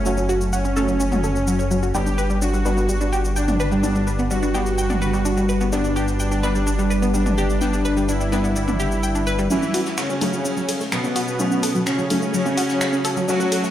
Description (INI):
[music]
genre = melodic techno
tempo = 127 BPM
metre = 4/4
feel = straight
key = F# phrygian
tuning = A4 = 440 Hz
[part]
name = soft supersaw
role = melody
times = 0.0-13.7 s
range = B2 to G4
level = -25 LUFS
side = equal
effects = dub echo
[part]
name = deep dark ambient pad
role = sustained chords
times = 0.0-13.7 s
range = G3 to B5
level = -29 LUFS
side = equal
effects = chorus, built-in reverb
[part]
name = synth brass stab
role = stabs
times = 0.0-13.7 s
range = F#3 to D4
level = -27 LUFS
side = equal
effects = chorus, phaser, dub echo
[part]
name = dark detuned saw bass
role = bass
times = 0.0-9.5 s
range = F#1 to G1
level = -23 LUFS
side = equal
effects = none
[part]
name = analog pluck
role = arpeggios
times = 0.1-13.7 s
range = F#3 to G5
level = -25 LUFS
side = equal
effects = chorus, phaser, dub echo
[part]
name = deep house drum kit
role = drums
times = 0.1-13.7 s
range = finger snaps, hi-hat, shaker, toms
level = -29 LUFS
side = left 1 dB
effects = high-pass filter on perc, high-pass filter on toms, high-pass filter on hats, high-pass filter on snare
[part]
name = jazz brush drum kit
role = drums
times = 9.5-13.7 s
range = hi-hat, ride cymbal, snare drum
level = -33 LUFS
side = right 2 dB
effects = high-pass filter on cymbals, high-pass filter on hats, high-pass filter on snare, high-pass filter on room
[sound]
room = light reverb, small room ambience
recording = played on a big sound system in a bare room, stone room reverb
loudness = -18 LUFS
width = side -12 dB against mid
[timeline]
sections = 0.0-9.5 A section; 9.5-13.7 B section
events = filter sweep on synth arpeggio sound 0.0-9.5; filter sweep on synth stab 0.0-9.5, 9.5-13.7; filter sweep on ambient pad 0.0-9.5; build-up 9.5-13.7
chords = 0.0 F#m; 1.9 G; 9.5 F#m